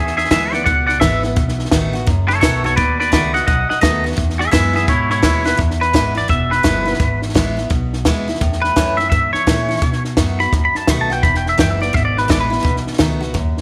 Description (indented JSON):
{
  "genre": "rockabilly",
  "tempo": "170 BPM",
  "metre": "4/4",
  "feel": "swing 63% on 8ths",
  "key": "E major",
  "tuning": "A4 = 441 Hz",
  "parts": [
    { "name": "twangy electric guitar", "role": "melody", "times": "0.0-12.8 s", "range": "E4 to B5", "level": "-20 LUFS", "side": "equal", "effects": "analog chorus, tape echo" },
    { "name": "picked steel-string acoustic guitar", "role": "accompaniment", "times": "0.0-13.6 s", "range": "E2 to F#4", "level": "-24 LUFS", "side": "equal", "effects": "none" },
    { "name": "upright bass", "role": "bass", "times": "0.0-13.6 s", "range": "E1 to B2", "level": "-24 LUFS", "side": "equal", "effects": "none" },
    { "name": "compact cocktail drum kit", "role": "drums", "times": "0.1-13.6 s", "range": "hi-hat, kick drum, snare drum", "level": "-21 LUFS", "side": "equal", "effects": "none" }
  ],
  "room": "light reverb, small room reverb",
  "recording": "none",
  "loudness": "-16 LUFS",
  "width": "mono",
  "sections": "0.0-5.6 A section; 5.6-13.6 A section",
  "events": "clean electric guitar solo 0.0-13.6; drum fill 5.4",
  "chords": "0.0 E; 1.4 B7; 4.2 E; 8.4 A; 9.8 B7; 11.2 E; 12.6 B7",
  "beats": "0.32 0.67 1.02 | 1.37 1.72 2.07 2.42 | 2.77 3.12 3.47 3.82 | 4.18 4.53 4.88 5.23 | 5.58 5.94 6.29 6.64 | 7.00 7.35 7.70 8.06 | 8.41 8.76 9.12 9.47 | 9.82 10.18 10.53 10.88 | 11.23 11.59 11.94 12.29 | 12.65 13.00 13.35"
}